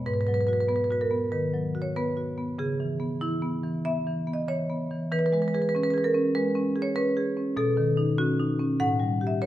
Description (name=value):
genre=classical, contemporary piece for solo marimba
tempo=96 BPM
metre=4/4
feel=rubato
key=E major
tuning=A4 = 436 Hz
part: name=marimba with medium hard mallets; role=solo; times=0.0-9.5 s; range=G#2 to F#5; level=-24 LUFS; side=equal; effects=none
room=moderate recital hall reverb, RT60 1.6 s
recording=none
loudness=-24 LUFS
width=side -13 dB against mid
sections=0.0-9.5 A section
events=none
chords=0.1 G#m7; 2.6 C#m7; 5.1 E6; 7.6 B9; 8.8 A7(no3)